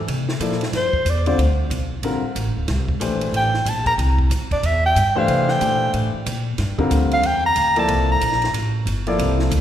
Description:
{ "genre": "modal jazz", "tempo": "184 BPM", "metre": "4/4", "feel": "swing 62% on 8ths", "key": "C mixolydian", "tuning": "A4 = 440 Hz", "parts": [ { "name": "upright bass", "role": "bass", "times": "0.0-9.6 s", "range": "D1 to C3", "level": "-21 LUFS", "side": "equal", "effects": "none" }, { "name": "compact cocktail drum kit", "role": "drums", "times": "0.1-9.6 s", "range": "hi-hat, kick drum, ride cymbal, snare drum", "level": "-29 LUFS", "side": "right 2 dB", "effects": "none" }, { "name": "warm grand piano", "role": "accompaniment", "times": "0.4-9.5 s", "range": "D3 to D5", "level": "-23 LUFS", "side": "left 2 dB", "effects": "none" }, { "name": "breathy soprano saxophone", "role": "melody", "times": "0.8-8.5 s", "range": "C5 to Bb5", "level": "-20 LUFS", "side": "equal", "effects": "none" } ], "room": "wet scoring stage reverb, RT60 1.8 s", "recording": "recorded in a church or concert hall", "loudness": "-17 LUFS", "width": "side -10 dB against mid", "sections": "0.0-9.6 A section", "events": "soprano saxophone solo 0.0-9.6", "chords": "0.1 Gmadd9; 2.7 C9; 5.3 Gmadd9; 7.9 C9" }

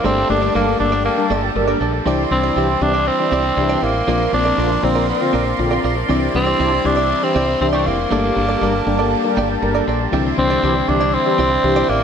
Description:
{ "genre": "pop", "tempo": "119 BPM", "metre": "4/4", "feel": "straight", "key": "C mixolydian", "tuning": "A4 = 440 Hz", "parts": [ { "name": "breathy tenor saxophone", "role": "melody", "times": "0.0-12.0 s", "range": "A3 to D4", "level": "-19 LUFS", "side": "right 1 dB", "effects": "ping-pong delay" }, { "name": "biting overdriven guitar", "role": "accompaniment", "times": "0.0-12.0 s", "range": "G2 to C4", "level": "-29 LUFS", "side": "right 1 dB", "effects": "wide subtle chorus" }, { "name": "soft electric-piano-like synth keys", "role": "accompaniment", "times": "0.0-12.0 s", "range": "D3 to C6", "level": "-23 LUFS", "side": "left 5 dB", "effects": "chorus" }, { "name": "phased analog pad", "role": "sustained chords", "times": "0.0-12.0 s", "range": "Bb3 to C6", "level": "-24 LUFS", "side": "equal", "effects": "phaser, chorus" }, { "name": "direct-recorded clean electric guitar", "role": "riff", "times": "0.0-12.0 s", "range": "Bb3 to D5", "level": "-24 LUFS", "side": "right 5 dB", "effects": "wide subtle chorus, ping-pong delay" }, { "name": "woody fretless electric bass", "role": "bass", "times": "0.0-12.0 s", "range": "F1 to C2", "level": "-22 LUFS", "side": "equal", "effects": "none" }, { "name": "mellow synth brass", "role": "stabs", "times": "0.5-11.9 s", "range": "D3 to Bb4", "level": "-24 LUFS", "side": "left 2 dB", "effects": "chorus" } ], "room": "light reverb, digital ambience", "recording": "none", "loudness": "-15 LUFS", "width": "side -7 dB against mid", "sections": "0.0-10.1 A section; 10.1-12.0 A section", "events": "synth keys fill 9.1-10.1", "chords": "0.0 Gmadd9; 2.1 Cadd9; 4.1 Bbadd9; 6.1 Cadd9; 8.1 Gmadd9; 10.1 Cadd9" }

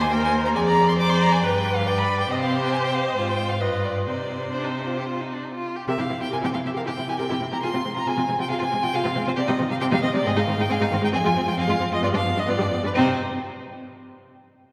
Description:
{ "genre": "quick classical-period movement for string quartet", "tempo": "136 BPM", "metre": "4/4", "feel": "straight", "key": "C minor", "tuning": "A4 = 439 Hz", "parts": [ { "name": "rich violin", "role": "melody", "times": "0.0-13.2 s", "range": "B4 to D6", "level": "-28 LUFS", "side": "equal", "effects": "none" }, { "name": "rich violin", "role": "second line", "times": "0.0-13.2 s", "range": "B3 to D5", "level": "-32 LUFS", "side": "equal", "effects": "none" }, { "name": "warm viola", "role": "accompaniment", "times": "0.0-13.2 s", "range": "Eb3 to D5", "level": "-29 LUFS", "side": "equal", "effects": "none" }, { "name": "rich cello", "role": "bass", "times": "0.0-13.2 s", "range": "Eb2 to C3", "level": "-28 LUFS", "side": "equal", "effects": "none" } ], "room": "wet church reverb, RT60 2.8 s", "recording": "recorded in a church or concert hall", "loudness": "-23 LUFS", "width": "mono", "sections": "0.0-5.9 A section; 5.9-12.9 B section; 12.9-14.7 C section", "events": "none", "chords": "0.0 Cm/Eb; 0.6 Ddim/F; 1.4 G; 2.3 C5; 3.2 Fm/Ab; 3.6 G7; 4.1 Cm; 5.9 C; 7.6 Fm/C; 9.4 Cm; 10.3 Ab5; 11.1 Fm; 12.0 G7(no3); 12.9 N.C." }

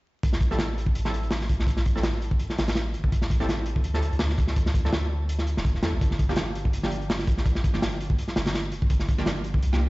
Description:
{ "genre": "drum and bass, jungle", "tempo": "166 BPM", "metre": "4/4", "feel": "swing 54% on 16ths", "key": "A phrygian", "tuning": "A4 = 438 Hz", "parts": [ { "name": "soft dub sub bass", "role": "bass", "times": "0.2-9.9 s", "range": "E1 to E2", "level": "-27 LUFS", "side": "equal", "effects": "none" }, { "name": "crunchy breakbeat drum kit", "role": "drums", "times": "0.2-9.8 s", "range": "hi-hat, kick drum, snare drum", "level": "-25 LUFS", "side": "equal", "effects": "none" }, { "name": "orchestra-hit-like synth stab", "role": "stabs", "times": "0.5-9.8 s", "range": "F3 to A4", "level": "-34 LUFS", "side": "right 1 dB", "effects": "built-in reverb, dub echo" } ], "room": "studio reverb", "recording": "played on a big sound system in a bare room, stone room reverb, vinyl crackle, nothing above 7.7 kHz", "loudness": "-23 LUFS", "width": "side -21 dB against mid", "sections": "0.2-9.9 A section", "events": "none", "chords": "0.2 Am7; 6.0 Gm7" }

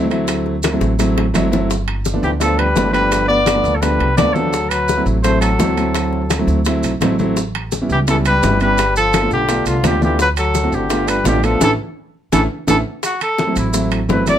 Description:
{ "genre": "Afro-Cuban jazz", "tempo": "169 BPM", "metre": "4/4", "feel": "straight", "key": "D mixolydian", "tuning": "A4 = 440 Hz", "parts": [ { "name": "warm concert grand piano", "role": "accompaniment", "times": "0.0-14.4 s", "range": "F3 to F#4", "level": "-19 LUFS", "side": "right 1 dB", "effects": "none" }, { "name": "upright bass", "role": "bass", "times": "0.0-14.4 s", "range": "G1 to D2", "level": "-20 LUFS", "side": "equal", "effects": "none" }, { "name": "congas", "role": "percussion", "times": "0.1-14.4 s", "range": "none", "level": "-24 LUFS", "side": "left 2 dB", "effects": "none" }, { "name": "maracas", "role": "percussion", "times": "0.1-14.4 s", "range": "none", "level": "-29 LUFS", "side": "right 4 dB", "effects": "none" }, { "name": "timbales", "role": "percussion", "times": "0.1-14.4 s", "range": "none", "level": "-25 LUFS", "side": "right 6 dB", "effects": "none" }, { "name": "bongos", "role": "percussion", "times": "0.3-14.3 s", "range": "none", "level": "-26 LUFS", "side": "left 8 dB", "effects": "none" }, { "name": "breathy trumpet", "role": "melody", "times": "2.2-14.4 s", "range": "E4 to D5", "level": "-18 LUFS", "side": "equal", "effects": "none" }, { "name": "clear trombone", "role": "second line", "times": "2.2-12.8 s", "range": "D3 to B3", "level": "-24 LUFS", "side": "left 5 dB", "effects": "none" } ], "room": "light reverb", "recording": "none", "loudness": "-14 LUFS", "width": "side -10 dB against mid", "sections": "0.0-13.0 A section; 13.0-14.4 B section", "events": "drum fill 0.8-1.7, 12.1-13.0; band accent 11.6-13.0; trumpet solo 13.0-14.4", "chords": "0.0 D9; 1.7 G9; 4.5 D9; 7.4 A9; 8.8 G9; 10.2 D9; 10.9 G9; 11.6 A; 13.0 Gmaj7sus2" }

